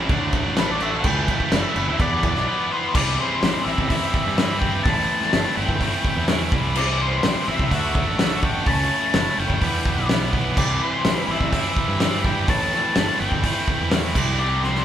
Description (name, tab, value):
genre	quiet-loud alternative rock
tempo	126 BPM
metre	4/4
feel	straight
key	unclear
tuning	A4 = 440 Hz
part	heavy high-gain guitar	riff	0.0-14.8 s	A2 to F#4	-23 LUFS	equal	distortion
part	fuzz fingered electric bass	bass	0.0-14.8 s	F#1 to G2	-27 LUFS	equal	overdrive
part	loose indie drum kit	drums	0.1-14.8 s	crash cymbal, hi-hat, kick drum, snare drum	-23 LUFS	equal	none
part	octave-fuzz lead guitar	melody	0.6-14.8 s	B4 to A5	-26 LUFS	left 3 dB	distortion
room	light reverb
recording	band playing live in one room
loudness	-18 LUFS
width	side -10 dB against mid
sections	0.0-3.0 A section; 3.0-14.8 B section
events	lead electric guitar solo 0.0-3.0; break 2.5-3.0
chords	0.1 D; 1.1 A/C#; 2.0 Em; 3.0 C6; 4.9 Am7; 6.5 C6; 7.7 Dadd9; 8.7 A/C#; 9.6 Em; 10.6 C6; 12.5 Am7; 14.1 C